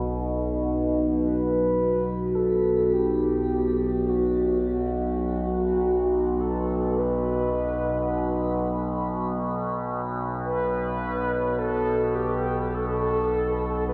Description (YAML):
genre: dark ambient drone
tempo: free time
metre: none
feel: none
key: unclear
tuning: A4 = 438 Hz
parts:
  - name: overtone-sweeping drone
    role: drone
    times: 0.0-13.9 s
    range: B1 to B2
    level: -27 LUFS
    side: equal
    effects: chorus, built-in reverb
  - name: mellow horn-like synth lead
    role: melody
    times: 1.2-13.9 s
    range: F#4 to B4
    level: -29 LUFS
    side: equal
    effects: chorus, shimmer reverb, diffuse ambient delay
room: wet cathedral reverb, RT60 5.2 s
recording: in a vast, echoing space, cassette tape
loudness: -25 LUFS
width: mono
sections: 0.0-13.9 A section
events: none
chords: none